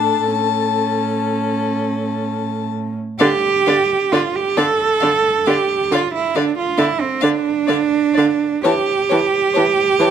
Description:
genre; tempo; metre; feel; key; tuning
classical, slow romantic movement for string quartet; 39-47 BPM (dotted quarters); 12/8; rubato; D minor; A4 = 440 Hz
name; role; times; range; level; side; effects
warm violin; melody; 0.0-10.1 s; F5 to A5; -24 LUFS; left 16 dB; none
dark violin; second line; 0.0-10.1 s; A4 to D5; -25 LUFS; left 4 dB; none
dark viola; accompaniment; 0.0-10.1 s; D3 to D4; -21 LUFS; right 1 dB; none
warm cello; bass; 0.0-10.1 s; A2 to A4; -17 LUFS; right 5 dB; none
room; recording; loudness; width
moderate recital hall reverb, RT60 1.7 s; close, detailed microphones; -15 LUFS; side -8 dB against mid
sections
0.0-3.2 A section; 3.2-10.1 B section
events
none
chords
0.3 A; 3.2 Dm; 8.7 A7(no3) (rootless)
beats
0.26 1.71 | 3.19 4.56 5.92 7.22 | 8.65 9.98

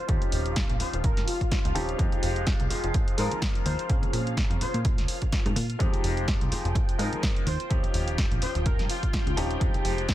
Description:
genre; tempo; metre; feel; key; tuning
filtered disco house; 126 BPM; 4/4; swing 56% on 16ths; F minor; A4 = 440 Hz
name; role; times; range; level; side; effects
analog synth brass; melody; 0.0-9.6 s; F4 to C5; -36 LUFS; left 3 dB; chorus, sidechain pumping, low-pass filter
phased string machine; sustained chords; 0.0-10.1 s; F4 to G5; -37 LUFS; equal; ensemble chorus, phaser, vintage 12-bit sampler grit, sidechain pumping, low-pass filter
bright concert grand piano; accompaniment; 0.1-10.1 s; F3 to Bb4; -33 LUFS; left 1 dB; phaser, vintage 12-bit sampler grit, sidechain pumping, low-pass filter
plucky analog bass; bass; 0.1-10.1 s; Eb1 to Bb2; -30 LUFS; equal; sidechain pumping, low-pass filter
electronic kick drum; drums; 0.1-10.1 s; none; -26 LUFS; equal; none
punchy analog drum machine; drums; 0.1-10.1 s; hi-hat, snare drum; -33 LUFS; equal; sidechain pumping on hats
tambourine and congas; percussion; 0.1-10.1 s; none; -39 LUFS; left 2 dB; none
room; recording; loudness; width
little or no reverb; none; -24 LUFS; side -14 dB against mid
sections
0.0-10.1 A section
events
none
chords
0.0 Eb13; 2.0 Fm9; 3.9 Bbm9; 5.8 Fm9; 7.5 Eb13; 9.6 Fm9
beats
| 0.09 0.56 1.04 1.51 | 1.99 2.47 2.94 3.42 | 3.90 4.37 4.85 5.32 | 5.80 6.28 6.75 7.23 | 7.71 8.18 8.66 9.13 | 9.61 10.09

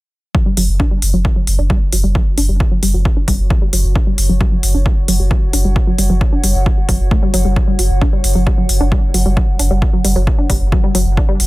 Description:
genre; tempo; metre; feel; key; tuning
driving peak-time techno; 133 BPM; 4/4; straight; unclear; A4 = 439 Hz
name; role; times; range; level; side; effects
analog pluck; riff; 0.3-11.4 s; F#3 to D4; -20 LUFS; equal; chorus, tube saturation, sidechain pumping, dub echo
electronic kick drum; drums; 0.3-11.3 s; none; -15 LUFS; equal; small room ambience
warbly tape-like pad; texture; 2.3-11.5 s; F#4 to F#5; -28 LUFS; left 1 dB; chorus, built-in reverb, sidechain pumping
warm sub bass; bass; 0.6-11.5 s; F#1; -15 LUFS; equal; tube saturation, sidechain pumping, low-pass filter
electronic hi-hat; drums; 0.6-11.5 s; none; -20 LUFS; equal; small room ambience
room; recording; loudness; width
digital ambience; dense, heavily limited modern master; -12 LUFS; side -20 dB against mid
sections
0.3-11.5 A section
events
fade-in on ambient pad 0.3-11.5; filter sweep on synth arpeggio sound 0.3-11.5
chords
0.3 F#5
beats
| 0.35 0.80 1.25 1.70 | 2.15 2.60 3.05 3.50 | 3.96 4.41 4.86 5.31 | 5.76 6.21 6.66 7.11 | 7.56 8.02 8.47 8.92 | 9.37 9.82 10.27 10.72 | 11.17

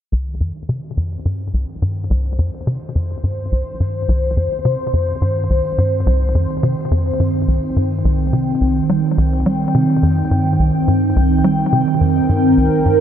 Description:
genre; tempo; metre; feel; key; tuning
ambient, sequencer-driven space music; 106 BPM; 4/4; straight; C minor; A4 = 440 Hz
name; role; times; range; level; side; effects
phased analog pad; sustained chords; 0.3-13.0 s; Eb3 to G5; -18 LUFS; right 1 dB; phaser, chorus
tight sequencer bass; riff; 0.1-13.0 s; C2 to G3; -17 LUFS; equal; analog chorus, ping-pong delay
room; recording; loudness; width
moderate huge ambient reverb, RT60 8.4 s; dreamy mix soaked in reverb; -15 LUFS; side -9 dB against mid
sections
0.1-13.0 A section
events
filter sweep on analog synth bass 0.1-13.0; filter sweep on analog synth pad 0.1-13.0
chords
0.1 Cm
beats
| 0.12 0.69 1.25 1.82 | 2.38 2.95 3.52 4.08 | 4.65 5.22 5.78 6.35 | 6.91 7.48 8.05 8.61 | 9.18 9.74 10.31 10.88 | 11.44 12.01 12.57

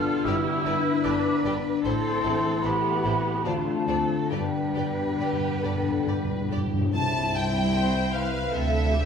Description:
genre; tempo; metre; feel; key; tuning
classical, slow romantic movement for symphony orchestra; 67-78 BPM; 3/4; rubato; C major; A4 = 438 Hz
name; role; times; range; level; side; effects
mellow hollow small flute group; second line; 0.0-6.5 s; G5 to F6; -30 LUFS; right 1 dB; none
rich studio viola section; accompaniment; 0.0-9.1 s; G3 to C5; -32 LUFS; right 1 dB; none
dark French horn section; sustained chords; 0.0-6.6 s; A3 to F4; -30 LUFS; left 2 dB; none
concert harp; arpeggios; 0.0-9.1 s; G2 to C5; -30 LUFS; left 7 dB; none
warm studio cello section; bass; 0.0-9.1 s; C2 to B4; -32 LUFS; right 3 dB; none
rich studio violin section; melody; 0.3-9.1 s; C5 to A5; -33 LUFS; left 1 dB; none
rich studio violin section; second line; 0.3-9.1 s; C4 to C5; -35 LUFS; left 3 dB; none
warm studio double bass section; bass; 0.3-9.1 s; G1 to G2; -32 LUFS; right 2 dB; none
timpani; percussion; 4.3-8.1 s; G2 to C3; -30 LUFS; right 1 dB; none
room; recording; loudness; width
wet scoring stage reverb, RT60 1.9 s; minimal, uncompressed stereo recording; -23 LUFS; side -7 dB against mid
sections
0.0-6.9 A section; 6.9-9.1 B section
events
timpani fill 4.3-6.9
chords
0.0 G7; 1.8 Am; 3.4 Dm7; 4.3 G; 6.9 C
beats
0.24 1.05 | 1.84 2.64 3.45 | 4.31 5.19 6.07 | 6.93 7.74 8.51

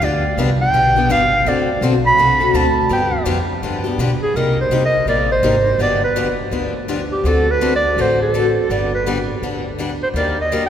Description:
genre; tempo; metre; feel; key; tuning
acoustic string swing (jazz manouche); 166 BPM; 4/4; swing 61% on 8ths; unclear; A4 = 439 Hz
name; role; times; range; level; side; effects
mellow clarinet; melody; 0.0-10.7 s; G4 to B5; -17 LUFS; right 1 dB; none
picked steel-string acoustic guitar; accompaniment; 0.0-10.6 s; C3 to A4; -20 LUFS; left 3 dB; none
upright bass; bass; 0.0-10.7 s; G1 to B2; -21 LUFS; equal; none
room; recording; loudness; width
wet cathedral reverb, RT60 4.8 s; recorded in a church or concert hall; -14 LUFS; side -9 dB against mid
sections
0.0-4.3 A section; 4.3-10.7 B section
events
clarinet solo 0.0-4.3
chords
0.0 G7; 1.5 D7; 2.9 G7; 4.3 Cm7; 5.8 G7; 7.2 D7; 8.7 G; 10.1 Ebmaj7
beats
| 0.01 0.37 0.73 1.09 | 1.46 1.82 2.18 2.54 | 2.90 3.26 3.62 3.98 | 4.35 4.71 5.07 5.43 | 5.79 6.16 6.52 6.88 | 7.24 7.61 7.97 8.33 | 8.69 9.06 9.42 9.78 | 10.15 10.51

